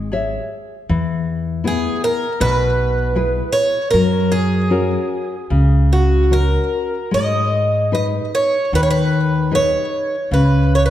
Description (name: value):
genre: fado-style ballad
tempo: 76 BPM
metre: 4/4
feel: uneven beats, rubato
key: unclear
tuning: A4 = 440 Hz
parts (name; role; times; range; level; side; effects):
- nylon-string guitar; accompaniment; 0.0-10.9 s; B2 to E5; -20 LUFS; left 3 dB; none
- upright bass; bass; 0.0-10.9 s; G#1 to G#2; -18 LUFS; right 1 dB; none
- picked twelve-string acoustic guitar; melody; 1.7-10.9 s; F#4 to D#5; -18 LUFS; right 1 dB; tape echo
room: moderate scoring stage reverb, RT60 1.6 s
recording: dark, warm production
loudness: -15 LUFS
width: side -12 dB against mid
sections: 0.0-10.9 A section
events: none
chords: 0.0 C#m; 0.9 E; 3.9 F#; 7.1 G#m; 10.3 C#7(no3)